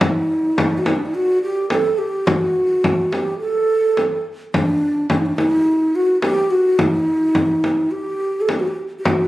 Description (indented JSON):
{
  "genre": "Persian modal ensemble",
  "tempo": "106 BPM",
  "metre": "4/4",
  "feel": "straight",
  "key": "D dastgah homayun",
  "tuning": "A4 = 440 Hz",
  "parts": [
    { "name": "breathy mellow ney", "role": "melody", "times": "0.0-9.3 s", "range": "D4 to A4", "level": "-17 LUFS", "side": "right 1 dB", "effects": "none" },
    { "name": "santur", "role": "second line", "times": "0.0-1.6 s", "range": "D5", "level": "-40 LUFS", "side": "right 2 dB", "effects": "none" },
    { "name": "frame drum", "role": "percussion", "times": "0.0-9.2 s", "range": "none", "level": "-20 LUFS", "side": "left 1 dB", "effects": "none" }
  ],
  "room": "moderate recital hall reverb, RT60 1.5 s",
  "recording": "recorded on a phone in the room, club reverb, compression",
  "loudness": "-16 LUFS",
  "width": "side -16 dB against mid",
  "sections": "0.0-9.3 A section",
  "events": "none",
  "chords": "none",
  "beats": "| 0.02 0.58 1.15 1.71 | 2.27 2.84 3.40 3.97 | 4.54 5.10 5.67 6.23 | 6.79 7.36 7.93 8.49 | 9.06"
}